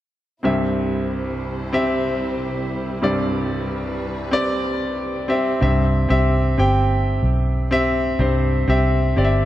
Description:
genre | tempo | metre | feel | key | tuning
pop | 93 BPM | 4/4 | straight | C major | A4 = 440 Hz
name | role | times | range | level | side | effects
clear concert grand piano | accompaniment | 0.4-9.5 s | C2 to G5 | -20 LUFS | equal | none
dark studio string section | sustained chords | 0.4-5.6 s | C3 to C5 | -31 LUFS | right 1 dB | none
vintage muted fingered electric bass | bass | 5.6-9.5 s | G1 to C2 | -18 LUFS | equal | none
room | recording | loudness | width
moderate lush hall reverb, RT60 1.9 s, studio ambience | none | -18 LUFS | side -13 dB against mid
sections
0.4-5.6 A section; 5.6-9.5 B section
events
none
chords
0.4 C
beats
| 0.44 1.09 1.74 2.38 | 3.03 3.67 4.32 4.97 | 5.61 6.26 6.91 7.55 | 8.20 8.85

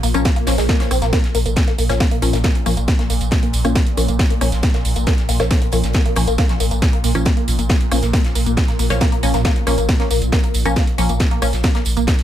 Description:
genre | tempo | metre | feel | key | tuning
driving peak-time techno | 137 BPM | 4/4 | straight | Bb minor | A4 = 440 Hz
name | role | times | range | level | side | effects
resonant blip pluck | riff | 0.0-12.1 s | Ab3 to C4 | -24 LUFS | left 1 dB | phaser, lush chorus, sidechain pumping, ping-pong delay
saturated sub bass | bass | 0.0-12.1 s | Bb1 | -20 LUFS | equal | sidechain pumping, low-pass filter
swarming drone | drone | 0.0-12.2 s | Bb2 | -27 LUFS | right 2 dB | built-in reverb, sidechain pumping
modern studio drum kit | drums | 0.0-12.2 s | hi-hat, snare drum | -34 LUFS | left 2 dB | high-pass filter on hats, high-pass filter on snare, high-pass filter on room
techno drum kit | drums | 0.0-12.2 s | hi-hat, rim click, snare drum, tambourine | -23 LUFS | equal | sidechain pumping on hats, sidechain pumping on perc
filtered dub chord stab | stabs | 0.1-11.5 s | F3 to Db4 | -23 LUFS | left 3 dB | phaser, sidechain pumping, digital delay
electronic kick drum | drums | 0.3-12.2 s | none | -17 LUFS | equal | none
swell | sound effects | 0.4-1.1 s | none | -26 LUFS | left 2 dB | none
room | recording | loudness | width
digital ambience | none | -14 LUFS | side -11 dB against mid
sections
0.0-12.2 A section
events
swell 0.4-1.1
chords
0.0 Bbm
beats
0.25 0.69 | 1.13 1.56 2.00 2.44 | 2.88 3.32 3.75 4.19 | 4.63 5.07 5.51 5.95 | 6.38 6.82 7.26 7.70 | 8.13 8.57 9.01 9.45 | 9.89 10.32 10.76 11.20 | 11.64 12.08

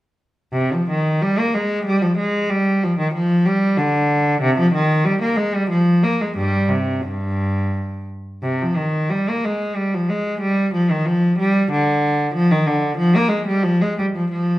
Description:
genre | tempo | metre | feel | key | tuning
classical, baroque-style suite movement for unaccompanied cello | 80-96 BPM | 3/4 | rubato | unclear | A4 = 440 Hz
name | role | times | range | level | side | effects
rich cello | solo | 0.5-14.6 s | G2 to Bb3 | -16 LUFS | equal | none
room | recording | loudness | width
wet recital hall reverb, RT60 1.3 s | none | -16 LUFS | side -16 dB against mid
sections
0.5-14.6 A section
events
none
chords
none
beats
| 0.53 1.21 1.85 | 2.50 3.14 3.77 | 4.41 5.04 5.68 | 6.34 7.01 7.69 | 8.42 9.11 9.77 | 10.42 11.06 11.71 | 12.34 12.97 13.63 | 14.32

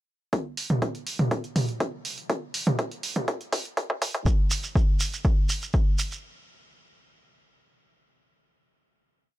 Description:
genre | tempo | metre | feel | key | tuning
techno | 122 BPM | 4/4 | straight | none | none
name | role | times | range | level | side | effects
electronic kick drum | drums | 0.3-5.8 s | none | -24 LUFS | equal | high-pass filter on kick, high-pass filter on room
punchy analog drum machine | drums | 0.3-6.1 s | hi-hat, toms | -28 LUFS | right 1 dB | sidechain pumping on hats, sidechain pumping on toms
shekere | percussion | 4.3-6.2 s | none | -31 LUFS | right 4 dB | none
room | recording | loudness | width
little or no reverb | high-pass filter | -24 LUFS | side -16 dB against mid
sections
0.3-4.3 build; 4.3-6.2 outro; 6.2-9.4 final hit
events
build-up 0.3-4.3; drum fill 2.3-4.3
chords
none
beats
| 0.33 0.82 1.31 1.80 | 2.30 2.79 3.28 3.77 | 4.26 4.75 5.25 5.74

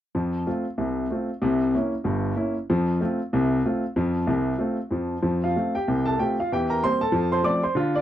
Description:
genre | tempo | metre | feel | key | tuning
jazz, stride piano | 189 BPM | 4/4 | swing 60% on 8ths | F major | A4 = 440 Hz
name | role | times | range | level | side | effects
warm grand piano | solo | 0.1-8.0 s | G1 to D6 | -22 LUFS | equal | none
room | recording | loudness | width
light reverb | dry, close 1970s-style studio recording | -22 LUFS | side -12 dB against mid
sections
0.1-5.2 A section; 5.2-8.0 B section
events
none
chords
0.1 F; 1.4 C7b9; 2.7 F; 6.5 C7/E; 7.1 F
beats
| 0.14 0.46 0.77 1.09 | 1.41 1.73 2.04 2.36 | 2.68 3.00 3.31 3.63 | 3.95 4.27 4.58 4.90 | 5.22 5.53 5.85 6.17 | 6.49 6.80 7.12 7.44 | 7.75

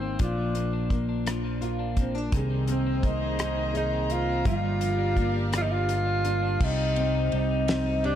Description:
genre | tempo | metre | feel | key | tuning
six-eight pop ballad | 56 BPM (dotted quarters) | 6/8 | straight | C minor | A4 = 443 Hz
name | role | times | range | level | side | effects
mellow tenor saxophone | melody | 0.0-8.2 s | C4 to F4 | -29 LUFS | right 1 dB | ping-pong delay
nylon-string guitar | accompaniment | 0.0-8.2 s | Bb2 to Bb4 | -31 LUFS | equal | double-tracked left and right
twelve-string electric guitar | arpeggios | 0.0-8.2 s | Eb3 to G4 | -36 LUFS | left 8 dB | spring reverb, ping-pong delay
fingered electric bass | bass | 0.0-8.2 s | G1 to C2 | -29 LUFS | equal | none
damped 70s drum kit | drums | 0.2-8.2 s | crash cymbal, hi-hat, kick drum, ride cymbal, rim click, snare drum | -29 LUFS | equal | none
warm studio string section | sustained chords | 2.3-6.6 s | G4 to Bb5 | -37 LUFS | left 2 dB | none
room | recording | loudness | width
light reverb, small room reverb | dark, warm production | -24 LUFS | side -10 dB against mid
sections
0.0-6.6 A section; 6.6-8.2 B section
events
none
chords
0.2 Bb; 2.3 Abadd9/C; 4.5 Gm7; 6.6 Cm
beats
| 0.20 1.26 | 2.33 3.39 | 4.45 5.53 | 6.61 7.68

